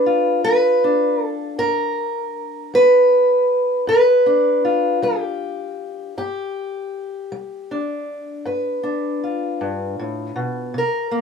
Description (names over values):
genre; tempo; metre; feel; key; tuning
acoustic country blues, solo or duo; 52 BPM (dotted quarters); 12/8; straight; G mixolydian; A4 = 440 Hz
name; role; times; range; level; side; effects
fingerpicked steel-string acoustic guitar; solo; 0.0-11.2 s; G2 to B4; -17 LUFS; equal; none
room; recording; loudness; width
wet booth ambience, RT60 0.3 s; minimal, uncompressed stereo recording; -17 LUFS; side -6 dB against mid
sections
0.0-11.2 A section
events
none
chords
0.0 G7